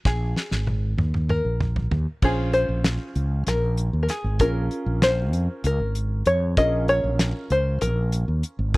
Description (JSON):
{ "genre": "progressive instrumental, band music in an uneven meter", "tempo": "193 BPM (eighths)", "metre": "7/8", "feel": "straight", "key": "Bb minor", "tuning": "A4 = 440 Hz", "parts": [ { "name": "open-back banjo", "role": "melody", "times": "0.1-8.8 s", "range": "Ab4 to Eb5", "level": "-24 LUFS", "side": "left 1 dB", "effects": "none" }, { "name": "fretless electric bass", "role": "bass", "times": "0.1-8.8 s", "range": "Ab1 to F2", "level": "-23 LUFS", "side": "equal", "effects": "none" }, { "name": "damped 70s drum kit", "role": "drums", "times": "0.1-8.8 s", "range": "crash cymbal, hi-hat, kick drum, snare drum, toms", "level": "-24 LUFS", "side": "equal", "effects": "none" }, { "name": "clear baby grand piano", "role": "accompaniment", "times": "2.2-8.8 s", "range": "Db4 to C5", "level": "-31 LUFS", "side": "right 2 dB", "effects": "none" } ], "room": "studio reverb", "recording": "dry, close 1970s-style studio recording", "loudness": "-21 LUFS", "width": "side -22 dB against mid", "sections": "0.0-2.2 A section; 2.2-8.8 B section", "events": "drum fill 0.1-2.2", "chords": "0.1 Absus2; 2.2 Bbm7" }